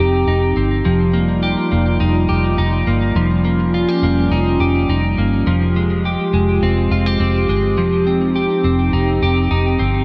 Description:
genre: dream pop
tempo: 104 BPM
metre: 4/4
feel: straight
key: unclear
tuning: A4 = 440 Hz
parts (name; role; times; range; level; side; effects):
- warbly tape-like pad; sustained chords; 0.0-10.0 s; G3 to G4; -22 LUFS; equal; chorus, built-in reverb
- clean electric guitar; arpeggios; 0.0-10.0 s; F3 to G4; -21 LUFS; equal; analog chorus, digital delay
- vintage muted fingered electric bass; bass; 0.0-10.0 s; F1 to G1; -20 LUFS; equal; none
room: moderate huge ambient reverb, RT60 4.0 s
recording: dark, warm production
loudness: -16 LUFS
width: mono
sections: 0.0-10.0 A section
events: none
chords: 0.0 Cm/F; 0.9 Ebadd9/F; 5.5 Fmadd9; 7.8 Cm/F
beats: 0.28 | 0.85 1.43 2.01 2.58 | 3.16 3.74 4.32 4.89 | 5.47 6.05 6.62 7.20 | 7.78 8.35 8.93 9.51

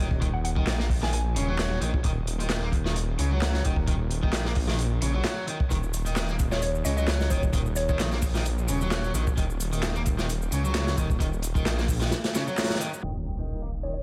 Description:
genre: breakbeat, breaks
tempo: 131 BPM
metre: 4/4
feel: swing 54% on 16ths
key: Eb minor pentatonic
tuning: A4 = 442 Hz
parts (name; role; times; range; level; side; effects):
- crunchy overdriven guitar; riff; 0.0-13.9 s; Db3 to Bb3; -35 LUFS; equal; low-pass filter, tape echo
- detuned saw bass; bass; 0.0-14.0 s; Eb1 to Db2; -30 LUFS; equal; none
- crunchy breakbeat drum kit; drums; 0.1-12.9 s; hi-hat, kick drum, snare drum; -30 LUFS; equal; none
- mallet-like synth pluck; melody; 0.3-1.2, 6.5-8.0, 13.8-14.0 s; Db5 to Ab5; -36 LUFS; equal; chorus, telephone sound, cassette tape, tape echo
- electronic handclaps and shaker; drums; 0.7-14.0 s; none; -41 LUFS; equal; tape echo
- impact; sound effects; 13.0-14.0 s; none; -38 LUFS; equal; none
room: light reverb, studio reverb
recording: echo-heavy mix, low-pass filter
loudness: -27 LUFS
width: mono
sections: 0.0-13.0 A section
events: band accent 12.6; impact 13.0-14.0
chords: 0.0 Ebm; 13.0 N.C.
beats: | 0.21 0.67 1.13 1.59 | 2.04 2.50 2.96 3.42 | 3.88 4.33 4.79 5.25 | 5.71 6.17 6.62 7.08 | 7.54 8.00 8.46 8.91 | 9.37 9.83 10.29 10.75 | 11.21 11.66 12.12 12.58 | 13.04 13.49 13.95

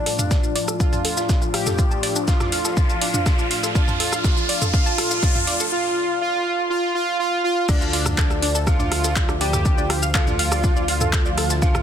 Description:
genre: melodic techno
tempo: 122 BPM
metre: 4/4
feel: straight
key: D minor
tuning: A4 = 440 Hz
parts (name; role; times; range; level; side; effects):
- analog synth brass; melody; 0.0-11.8 s; D4 to G4; -24 LUFS; right 1 dB; chorus, sidechain pumping, dub echo
- warm analog pad; sustained chords; 0.0-11.8 s; A2 to F4; -30 LUFS; left 1 dB; chorus, sidechain pumping
- riser; sound effects; 1.4-5.7 s; none; -28 LUFS; equal; none
- wide unison pluck; arpeggios; 0.1-11.8 s; D4 to A6; -29 LUFS; equal; sidechain pumping, digital delay
- deep house drum kit; drums; 0.1-11.8 s; crash cymbal, handclaps, hi-hat, rim click, shaker, toms; -24 LUFS; equal; soft clipping on snare, small room ambience
- dusty soul sampler-style drum kit; drums; 0.1-11.7 s; hi-hat, snare drum; -35 LUFS; left 2 dB; none
- electronic kick drum; drums; 0.3-11.7 s; none; -20 LUFS; equal; small room ambience
- dark detuned synth bell; second line; 7.7-11.8 s; D5 to G5; -32 LUFS; right 1 dB; chorus, sidechain pumping, digital delay
- gritty driven synth bass; bass; 7.7-11.8 s; D2; -25 LUFS; equal; sidechain pumping
room: light reverb, digital ambience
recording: dense, heavily limited modern master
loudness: -18 LUFS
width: side -9 dB against mid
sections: 0.0-7.7 A section; 7.7-11.8 B section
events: build-up 0.0-7.7; riser 1.4-5.7; break 5.7-7.7; drop 7.7-11.8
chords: 0.0 Dm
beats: 0.31 0.80 1.29 | 1.78 2.28 2.77 3.26 | 3.75 4.24 4.74 5.23 | 5.72 6.21 6.70 7.20 | 7.69 8.18 8.67 9.16 | 9.65 10.15 10.64 11.13 | 11.62

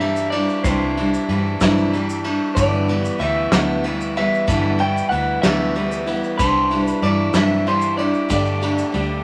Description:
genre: folk rock and heartland rock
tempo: 63 BPM (dotted quarters)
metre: 6/8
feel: straight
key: G major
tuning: A4 = 440 Hz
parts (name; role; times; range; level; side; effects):
- electric guitar through a small old amp; melody; 0.0-9.2 s; C5 to G5; -25 LUFS; equal; none
- picked steel-string acoustic guitar; accompaniment; 0.0-9.2 s; G2 to G4; -23 LUFS; equal; none
- fingered electric bass; bass; 0.0-9.2 s; G1 to G2; -27 LUFS; equal; none
- soft brush drum kit; drums; 0.0-9.1 s; crash cymbal, kick drum, ride cymbal, snare drum; -26 LUFS; equal; none
- tube shaker; percussion; 0.2-8.9 s; none; -42 LUFS; equal; none
room: moderate studio reverb, RT60 0.6 s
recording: none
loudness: -19 LUFS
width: mono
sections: 0.0-9.2 A section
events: none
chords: 0.0 Cadd9; 2.6 G6; 6.4 Cadd9; 8.3 Gsus2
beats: | 0.65 1.61 | 2.57 3.53 | 4.49 5.44 | 6.40 7.35 | 8.31

